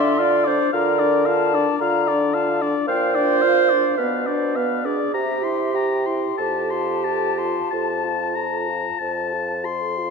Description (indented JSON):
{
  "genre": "classical, slow romantic movement for wind quintet",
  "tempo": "45-56 BPM",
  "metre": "3/4",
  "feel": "rubato",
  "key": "F major",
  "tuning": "A4 = 439 Hz",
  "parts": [
    { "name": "mellow hollow silver concert flute", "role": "melody", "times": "0.0-9.7 s", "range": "D5 to C6", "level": "-28 LUFS", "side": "left 11 dB", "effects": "none" },
    { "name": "warm oboe", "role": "second line", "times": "0.0-10.1 s", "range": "D5 to C6", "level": "-25 LUFS", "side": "left 6 dB", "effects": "none" },
    { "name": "warm French horn", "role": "accompaniment", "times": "0.0-10.1 s", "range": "B3 to A4", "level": "-26 LUFS", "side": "left 4 dB", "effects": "none" },
    { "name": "warm clarinet", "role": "accompaniment", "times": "0.0-9.0 s", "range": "F4 to E5", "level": "-22 LUFS", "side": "right 7 dB", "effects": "none" },
    { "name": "warm bassoon", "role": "bass", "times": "0.0-10.1 s", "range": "F2 to D3", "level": "-24 LUFS", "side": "right 1 dB", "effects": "none" }
  ],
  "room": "moderate scoring stage reverb, RT60 1.8 s",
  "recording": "dark, warm production",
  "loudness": "-18 LUFS",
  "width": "side -5 dB against mid",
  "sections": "0.0-10.1 A section",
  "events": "none",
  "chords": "0.0 Bb/D; 2.9 Bb; 4.0 Bdim; 5.1 C7; 6.4 F"
}